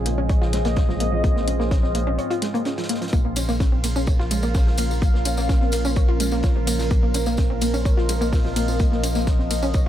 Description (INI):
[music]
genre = melodic techno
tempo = 127 BPM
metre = 4/4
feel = straight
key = Bb minor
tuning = A4 = 438 Hz
[part]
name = evolving wavetable pad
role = sustained chords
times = 0.0-9.9 s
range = Ab2 to F4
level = -29 LUFS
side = right 2 dB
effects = phaser, built-in reverb, sidechain pumping
[part]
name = woody wave-folded pluck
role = arpeggios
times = 0.0-9.9 s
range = F3 to Db5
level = -27 LUFS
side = equal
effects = lush chorus, sidechain pumping, digital delay
[part]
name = round analog bass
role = bass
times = 0.0-9.9 s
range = Bb1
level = -25 LUFS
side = equal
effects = sidechain pumping
[part]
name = warbly tape-like pad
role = texture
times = 0.0-9.9 s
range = Ab4 to F5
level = -30 LUFS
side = left 1 dB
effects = chorus, built-in reverb, phaser, sidechain pumping
[part]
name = deep house drum kit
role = drums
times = 0.1-9.6 s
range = hi-hat, ride cymbal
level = -34 LUFS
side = equal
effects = overdrive
[part]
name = vintage drum kit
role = drums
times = 0.1-9.9 s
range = hi-hat, snare drum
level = -39 LUFS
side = equal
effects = high-pass filter on hats, high-pass filter on snare, high-pass filter on room
[part]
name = electronic kick drum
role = drums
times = 0.3-9.8 s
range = none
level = -20 LUFS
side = equal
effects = none
[part]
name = tambourine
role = percussion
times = 3.1-9.8 s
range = none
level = -33 LUFS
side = left 2 dB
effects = none
[sound]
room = studio ambience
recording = none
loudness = -19 LUFS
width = side -11 dB against mid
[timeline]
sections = 0.0-9.9 A section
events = break 2.2-3.1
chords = 0.0 Bbm